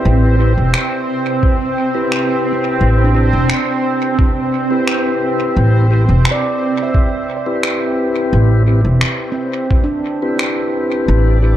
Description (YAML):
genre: ambient dub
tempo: 87 BPM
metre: 4/4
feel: straight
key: A minor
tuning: A4 = 441 Hz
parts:
  - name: granular cloud pad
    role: sustained chords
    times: 0.0-11.6 s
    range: C4 to D5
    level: -19 LUFS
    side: right 3 dB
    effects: built-in reverb
  - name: handpan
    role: arpeggios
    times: 0.0-11.6 s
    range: C4 to E5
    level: -24 LUFS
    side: right 2 dB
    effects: dub echo
  - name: mellow tonewheel organ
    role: stabs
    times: 0.0-11.6 s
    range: C4 to B4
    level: -20 LUFS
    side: left 2 dB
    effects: slow rotary speaker, dub echo
  - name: upright bass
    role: bass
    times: 0.1-11.6 s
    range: E1 to A1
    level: -12 LUFS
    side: equal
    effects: none
  - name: electronic finger snaps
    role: drums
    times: 0.7-10.5 s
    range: none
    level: -21 LUFS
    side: equal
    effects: overdrive, dub echo
  - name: electronic kick drum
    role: drums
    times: 1.4-9.8 s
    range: none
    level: -14 LUFS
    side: equal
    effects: none
room: light reverb, digital ambience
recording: none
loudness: -13 LUFS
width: side -12 dB against mid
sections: 0.0-11.6 A section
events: none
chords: 0.0 Am7